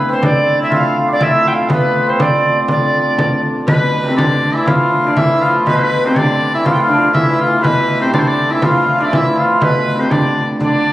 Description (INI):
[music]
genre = medieval dance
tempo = 121 BPM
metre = 2/4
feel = straight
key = D dorian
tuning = A4 = 440 Hz
[part]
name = reedy tenor recorder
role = melody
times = 0.0-10.9 s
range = C4 to G5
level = -17 LUFS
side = equal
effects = none
[part]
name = hammered dulcimer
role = second line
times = 0.0-10.9 s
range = B2 to F4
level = -17 LUFS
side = right 1 dB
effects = none
[part]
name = dark hurdy-gurdy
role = drone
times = 0.0-10.9 s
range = D3 to A3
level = -25 LUFS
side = left 1 dB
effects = none
[part]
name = frame drum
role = percussion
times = 0.2-10.9 s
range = none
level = -18 LUFS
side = equal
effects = none
[part]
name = bright shawm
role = second line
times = 3.7-10.9 s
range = B4 to G5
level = -17 LUFS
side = left 2 dB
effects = none
[sound]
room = wet recital hall reverb, RT60 1.8 s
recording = recorded on a phone in the room, club reverb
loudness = -11 LUFS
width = side -15 dB against mid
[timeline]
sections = 0.0-3.7 A section; 3.7-10.9 A section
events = none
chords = none